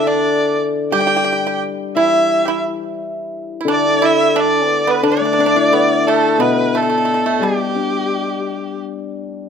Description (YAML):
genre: chinese traditional, Chinese chamber ensemble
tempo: 88 BPM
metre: 4/4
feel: straight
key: G gong mode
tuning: A4 = 439 Hz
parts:
  - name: rich erhu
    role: melody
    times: 0.0-8.8 s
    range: G4 to G5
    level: -17 LUFS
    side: right 1 dB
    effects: none
  - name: pipa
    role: second line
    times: 0.0-8.8 s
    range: G3 to G4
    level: -21 LUFS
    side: right 8 dB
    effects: none
  - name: hammered dulcimer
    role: accompaniment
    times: 0.0-9.5 s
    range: B2 to A4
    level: -18 LUFS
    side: left 5 dB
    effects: none
room: light reverb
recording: close, detailed microphones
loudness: -14 LUFS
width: side -7 dB against mid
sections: 0.0-9.2 A section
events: none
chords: none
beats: 0.25 | 0.94 1.63 2.31 2.99 | 3.67 4.36 5.04 5.72 | 6.40 7.08 7.77 8.47 | 9.18